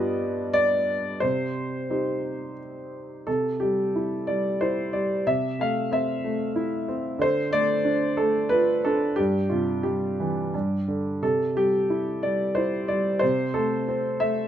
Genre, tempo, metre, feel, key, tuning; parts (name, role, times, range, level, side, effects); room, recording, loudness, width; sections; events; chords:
classical, lyrical solo piano; 90 BPM; 3/4; rubato; C minor, C major from 3.3 s; A4 = 438 Hz
warm grand piano; solo; 0.0-14.5 s; G2 to F5; -23 LUFS; equal
light reverb; close, detailed microphones; -22 LUFS; side -10 dB against mid
0.0-3.3 A section; 3.3-14.5 B section
0.0 G7; 1.2 Cm; 3.3 C; 5.3 Am/C; 7.2 Dm; 9.2 C/G; 10.5 G5; 11.2 C; 13.2 Am/C